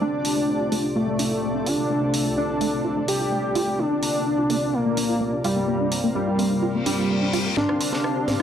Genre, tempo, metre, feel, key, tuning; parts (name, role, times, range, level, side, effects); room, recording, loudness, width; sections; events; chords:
melodic techno; 127 BPM; 4/4; straight; A4 = 440 Hz
wide unison lead; melody; 0.0-8.4 s; G3 to G4; -23 LUFS; equal; tape echo
dark analog pad; sustained chords; 0.0-8.4 s; C3 to D5; -29 LUFS; equal; chorus
tight sequenced synth; arpeggios; 0.0-8.4 s; A3 to C6; -29 LUFS; equal; chorus, phaser, analog delay
granular cloud pad; texture; 0.0-8.4 s; C3 to C6; -31 LUFS; left 1 dB; built-in reverb
house drum kit; drums; 0.2-8.4 s; hi-hat, rim click, snare drum, toms; -30 LUFS; right 1 dB; overdrive
reverse cymbal and riser; sound effects; 6.8-8.4 s; -30 LUFS; left 5 dB
swarming drone; drone; 7.9-8.4 s; C3 to C4; -36 LUFS; left 2 dB; built-in reverb
light reverb; dry, gritty hardware recording; -20 LUFS; side -9 dB against mid
0.0-7.6 A section
reverse cymbal 6.8-7.6; drum fill 7.6-8.4
0.0 Dm/C; 3.8 Bb/C; 7.6 Cm